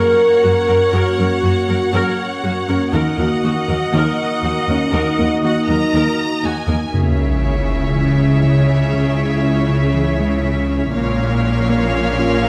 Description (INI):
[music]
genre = cinematic, hybrid orchestral and electronic film score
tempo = 120 BPM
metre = 4/4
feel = straight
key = C# dorian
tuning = A4 = 440 Hz
[part]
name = rich symphonic violin section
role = melody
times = 0.0-6.9 s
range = F#5 to A#5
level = -28 LUFS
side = equal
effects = none
[part]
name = clear symphonic viola section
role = accompaniment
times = 0.0-12.5 s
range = C#4 to D#5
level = -27 LUFS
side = equal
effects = none
[part]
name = dark French horn section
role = sustained chords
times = 0.0-6.7 s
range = C#4 to A#4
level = -20 LUFS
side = equal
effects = none
[part]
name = glassy FM pad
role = sustained chords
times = 0.0-12.5 s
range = G#3 to C#5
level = -27 LUFS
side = equal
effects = ensemble chorus, built-in reverb
[part]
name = harp-like synth pluck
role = arpeggios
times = 0.0-12.5 s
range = C#3 to F#4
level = -25 LUFS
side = equal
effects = chorus, tape echo
[part]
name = clear symphonic cello section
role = bass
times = 0.4-12.5 s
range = D#2 to C#3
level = -22 LUFS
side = equal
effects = none
[part]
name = dark studio violin section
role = second line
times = 6.9-12.5 s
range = C#5 to E#5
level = -26 LUFS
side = equal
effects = none
[part]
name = clear symphonic double bass section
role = bass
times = 6.9-12.5 s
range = A#1 to C#2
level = -24 LUFS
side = equal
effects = none
[part]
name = sub drop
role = sound effects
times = 6.9-8.9 s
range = none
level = -23 LUFS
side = equal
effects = none
[sound]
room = wet scoring stage reverb, RT60 1.8 s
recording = none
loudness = -17 LUFS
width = mono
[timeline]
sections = 0.0-6.9 A section; 6.9-12.5 B section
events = impact 6.9-8.9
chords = 0.0 F#; 2.9 D#m; 6.9 C#m; 10.9 A#m